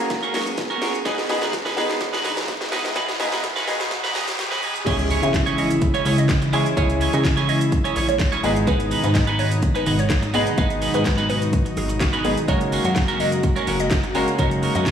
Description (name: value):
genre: dance-pop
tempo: 126 BPM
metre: 4/4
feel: straight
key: G# minor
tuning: A4 = 440 Hz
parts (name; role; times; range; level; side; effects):
- clear baby grand piano; accompaniment; 0.0-14.9 s; G#3 to G#4; -25 LUFS; left 2 dB; sidechain pumping
- airy breathy pad; sustained chords; 0.0-14.9 s; B2 to G#4; -27 LUFS; equal; chorus, sidechain pumping
- clean electric guitar; riff; 0.0-14.9 s; G#3 to C#5; -26 LUFS; right 5 dB; analog chorus
- riser and impact; sound effects; 0.1-6.8 s; none; -31 LUFS; equal; none
- house drum kit; drums; 0.1-14.9 s; crash cymbal, handclaps, hi-hat, kick drum, shaker, snare drum; -24 LUFS; equal; none
- hollow square pluck; melody; 4.9-14.9 s; F#4 to F#5; -28 LUFS; right 1 dB; chorus, phaser, sidechain pumping, digital delay
- plucky analog bass; bass; 4.9-14.9 s; F#1 to C#3; -24 LUFS; equal; sidechain pumping
room: moderate digital room reverb, RT60 1.2 s, digital ambience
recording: blown-out, overdriven recording, overdrive, high-pass filter, studio reverb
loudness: -18 LUFS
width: side -8 dB against mid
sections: 0.0-4.9 A section; 4.9-14.9 B section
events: build-up 0.0-4.9; drum fill 0.0-4.9; riser 0.1-4.9; drop 4.9-14.9; impact 4.9-6.8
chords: 0.0 F#add9; 1.1 G#m; 4.9 C#m; 8.4 G#m; 12.5 F#add9